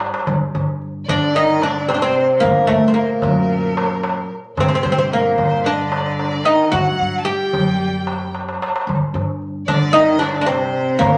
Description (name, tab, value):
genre	Arabic maqam ensemble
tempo	112 BPM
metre	4/4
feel	straight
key	G maqam nahawand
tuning	A4 = 439 Hz
part	darbuka	percussion	0.0-11.1 s	none	-24 LUFS	equal	none
part	upright bass	bass	0.3-11.2 s	F#2 to G2	-28 LUFS	equal	none
part	oud	melody	1.1-11.2 s	A3 to G4	-19 LUFS	equal	none
part	clear cello	second line	1.1-11.2 s	A2 to G3	-28 LUFS	equal	none
part	clear violin	second line	1.1-11.2 s	Bb4 to A5	-29 LUFS	equal	none
room	wet studio reverb, RT60 0.7 s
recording	none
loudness	-18 LUFS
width	mono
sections	0.3-11.2 A section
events	drum fill 0.0, 8.3-8.9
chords	none